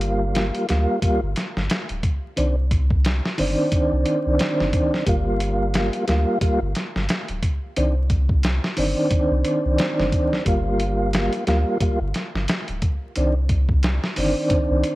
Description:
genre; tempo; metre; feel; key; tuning
trip hop; 89 BPM; 4/4; swing 58% on 16ths; G minor; A4 = 440 Hz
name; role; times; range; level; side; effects
mellow tonewheel organ; accompaniment; 0.0-15.0 s; Eb3 to F4; -22 LUFS; equal; overdrive, fast rotary speaker, tremolo, tape echo
warm sub bass; bass; 0.0-14.8 s; D1 to D2; -22 LUFS; equal; tube saturation
dusty soul sampler-style drum kit; drums; 0.0-15.0 s; hi-hat, kick drum, snare drum; -23 LUFS; equal; none
room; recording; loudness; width
digital ambience; worn, warbling old tape, cassette tape, vinyl crackle, warbly pitch drift; -19 LUFS; side -18 dB against mid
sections
0.0-15.0 A section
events
none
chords
0.0 Gm7; 2.4 Cmadd9; 5.1 Gm7; 7.8 Cmadd9; 10.5 Gm7; 13.2 Cmadd9

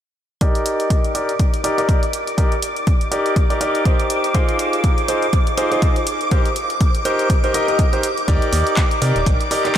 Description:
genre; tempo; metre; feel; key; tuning
piano house; 122 BPM; 4/4; swing 57% on 16ths; Eb major; A4 = 439 Hz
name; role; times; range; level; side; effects
string machine, violins; sustained chords; 0.4-9.8 s; D6; -25 LUFS; equal; ensemble chorus, sidechain pumping
bright grand piano; riff; 0.4-9.8 s; Eb4 to Eb5; -20 LUFS; equal; sidechain pumping, low-pass filter, tape echo
electronic kick drum; drums; 0.4-9.8 s; none; -17 LUFS; equal; none
punchy analog drum machine; drums; 0.4-9.8 s; handclaps, hi-hat; -27 LUFS; right 1 dB; none
organ-like FM bass; bass; 8.3-9.4 s; Eb1 to C3; -19 LUFS; equal; sidechain pumping
electronic shaker and snare drum; drums; 8.3-9.8 s; none; -33 LUFS; right 2 dB; none
room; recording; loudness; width
moderate huge ambient reverb, RT60 8.1 s; dreamy mix soaked in reverb; -15 LUFS; side -10 dB against mid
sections
0.4-9.8 A section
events
filter sweep on grand piano 0.4-9.8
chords
0.4 Ebmaj7; 4.3 Fm7; 6.3 Ebmaj7

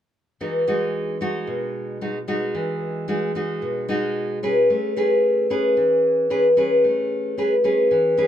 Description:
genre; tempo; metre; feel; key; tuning
bossa nova; 112 BPM; 4/4; straight; E major; A4 = 436 Hz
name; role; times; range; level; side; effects
nylon-string guitar; accompaniment; 0.4-8.3 s; B2 to B4; -19 LUFS; equal; none
room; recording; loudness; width
moderate small room reverb, RT60 0.6 s; none; -19 LUFS; side -10 dB against mid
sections
0.4-8.3 A section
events
none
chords
0.4 Emaj9; 4.7 Amaj9

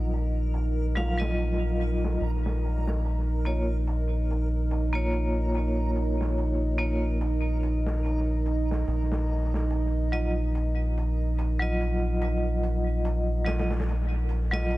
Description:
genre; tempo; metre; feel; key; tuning
trip hop; 72 BPM; 4/4; swing 55% on 16ths; unclear; A4 = 439 Hz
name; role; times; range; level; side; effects
vibraphone with hard mallets; accompaniment; 0.0-14.8 s; Gb3 to F5; -31 LUFS; equal; tremolo, vintage 12-bit sampler grit, tape echo
dark analog pad; sustained chords; 0.0-14.8 s; Eb4 to Eb5; -34 LUFS; right 3 dB; chorus
round analog bass; bass; 0.0-14.8 s; Bb1; -26 LUFS; equal; none
backwards swelling texture; texture; 0.0-14.8 s; Bb4; -43 LUFS; right 3 dB; built-in reverb
crunchy breakbeat drum kit; drums; 0.1-14.8 s; hi-hat, snare drum; -38 LUFS; equal; low-pass filter on hats, low-pass filter on snare, low-pass filter on room, tape echo
room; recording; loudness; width
small room ambience; echo-heavy mix; -24 LUFS; side -18 dB against mid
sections
0.0-14.8 A section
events
none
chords
0.0 Ebmadd9/Bb; 2.2 Bbm; 8.9 Ebmadd9/Bb

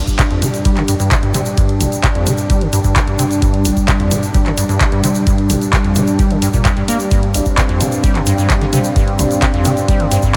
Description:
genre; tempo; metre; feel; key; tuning
acid house; 130 BPM; 4/4; straight; unclear; A4 = 440 Hz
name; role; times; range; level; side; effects
lush unison pad; sustained chords; 0.0-10.4 s; G2 to D4; -21 LUFS; equal; chorus, phaser, sidechain pumping
deep acid bass; riff; 0.0-10.3 s; G1 to Bb3; -20 LUFS; equal; overdrive, lush chorus, sidechain pumping, tape echo
warbly tape-like pad; texture; 0.1-10.4 s; D4 to G5; -27 LUFS; equal; chorus, built-in reverb, sidechain pumping
electronic kick drum; drums; 0.1-10.3 s; none; -18 LUFS; equal; overdrive
punchy analog drum machine; drums; 0.1-10.3 s; handclaps, hi-hat, ride cymbal, toms; -23 LUFS; equal; none
tube shaker; percussion; 0.1-10.4 s; none; -29 LUFS; equal; none
room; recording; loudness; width
moderate cathedral reverb, RT60 5.2 s; dreamy mix soaked in reverb; -14 LUFS; mono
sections
0.0-10.4 A section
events
none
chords
0.0 G5

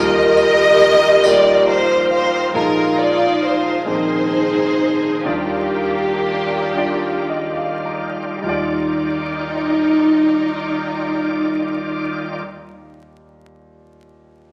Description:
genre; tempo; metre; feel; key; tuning
slow gospel; 34-46 BPM (dotted quarters); 6/8; straight; Eb major; A4 = 440 Hz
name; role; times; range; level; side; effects
warm studio string section; melody; 0.0-12.4 s; Bb3 to Eb5; -18 LUFS; equal; none
warm concert grand piano; accompaniment; 0.0-14.5 s; Bb1 to Bb5; -27 LUFS; equal; none
bright tonewheel organ; sustained chords; 0.0-12.4 s; Eb3 to D5; -28 LUFS; equal; slow rotary speaker, overdrive, chorus vibrato
tambourine; percussion; 0.4-1.6 s; none; -35 LUFS; equal; none
room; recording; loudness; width
wet large studio reverb, RT60 1.4 s; vinyl crackle; -17 LUFS; mono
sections
0.0-2.5 A section; 2.5-8.4 B section; 8.4-12.0 C section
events
grand piano fill 1.2-2.5, 6.8-8.4; slowing down 2.5-8.4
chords
0.0 Ebadd9; 2.5 Bb7sus4; 3.9 Bb9sus4; 5.3 Ebmaj9

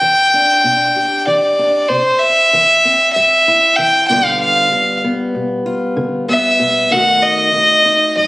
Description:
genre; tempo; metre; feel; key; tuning
folk; 96 BPM; 4/4; straight; C major; A4 = 440 Hz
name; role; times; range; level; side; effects
warm fiddle; melody; 0.0-8.3 s; C5 to G5; -10 LUFS; equal; none
fingerpicked acoustic archtop guitar; accompaniment; 0.0-8.3 s; F#2 to G4; -20 LUFS; left 1 dB; none
room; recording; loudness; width
light reverb; recorded on a phone in the room, studio reverb, compression; -10 LUFS; side -19 dB against mid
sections
0.0-1.9 A section; 1.9-8.3 A section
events
none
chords
0.0 Em7; 1.9 C; 4.1 G7/B; 6.9 B7

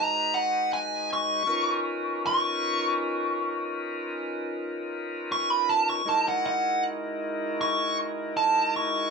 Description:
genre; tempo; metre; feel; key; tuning
blues; 52 BPM (dotted quarters); 12/8; straight; F# major; A4 = 440 Hz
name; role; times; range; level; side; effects
dark smooth lead guitar; melody; 0.0-9.1 s; F#5 to C#6; -25 LUFS; right 1 dB; overdrive
bright tonewheel organ; sustained chords; 0.0-9.1 s; G#3 to B4; -30 LUFS; equal; slow rotary speaker
room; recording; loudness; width
light reverb; none; -24 LUFS; side -4 dB against mid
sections
0.0-9.1 A section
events
lead electric guitar solo 0.0-9.1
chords
0.0 G#m7; 1.5 C#13; 6.1 F#13

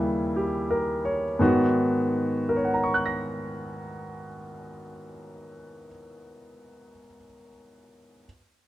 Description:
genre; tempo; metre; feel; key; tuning
solo jazz; 55 BPM; 4/4; swing 66% on 8ths; G# minor; A4 = 441 Hz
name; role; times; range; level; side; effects
warm grand piano; solo; 0.0-8.3 s; D#2 to A#6; -25 LUFS; equal; none
room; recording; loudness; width
moderate club reverb, RT60 0.5 s; dark, warm production; -23 LUFS; side -15 dB against mid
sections
0.0-1.4 A section; 1.4-5.7 B section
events
slowing down 0.0-1.4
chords
0.0 D#7b9; 1.4 G#m7

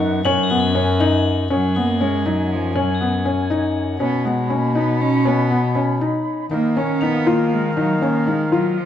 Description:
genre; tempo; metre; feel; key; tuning
contemporary instrumental, chamber music in an uneven meter; 240 BPM (eighths); 5/8; straight; unclear; A4 = 440 Hz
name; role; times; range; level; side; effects
warm cello; melody; 0.0-8.9 s; F#2 to C#4; -23 LUFS; right 4 dB; none
warm woodwind section; sustained chords; 0.0-8.8 s; E#3 to B5; -29 LUFS; right 1 dB; none
felt-muted upright piano; arpeggios; 0.0-8.9 s; B3 to E#4; -20 LUFS; left 2 dB; none
clear bass clarinet; bass; 0.0-8.9 s; F#2 to D#3; -22 LUFS; left 2 dB; none
crotales; texture; 0.2-4.4, 7.0-8.5 s; E#7 to B7; -28 LUFS; left 6 dB; none
room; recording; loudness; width
light reverb; dark, warm production; -16 LUFS; side -10 dB against mid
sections
0.0-1.5 A section; 1.5-8.9 B section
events
none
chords
0.0 C#9sus4/F#; 4.0 Badd9; 6.5 D#sus2

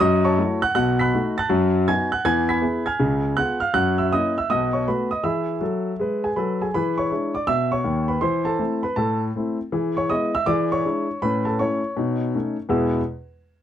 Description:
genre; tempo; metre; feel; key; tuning
jazz, stride piano; 160 BPM; 4/4; swing 66% on 8ths; E major; A4 = 442 Hz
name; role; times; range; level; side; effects
clear grand piano; solo; 0.0-13.0 s; B1 to B6; -20 LUFS; equal; none
room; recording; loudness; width
moderate booth ambience, RT60 0.2 s; dry, close 1970s-style studio recording; -20 LUFS; side -10 dB against mid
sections
0.0-6.7 A section; 6.7-12.7 B section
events
none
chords
0.0 F#m7; 0.8 B7; 1.5 B7/F#; 2.2 E; 3.0 C#7; 3.7 F#7; 4.5 B7; 5.2 E; 6.7 E7; 8.2 Am/E; 9.7 E; 10.5 E7; 11.2 A; 12.0 B9; 12.7 E

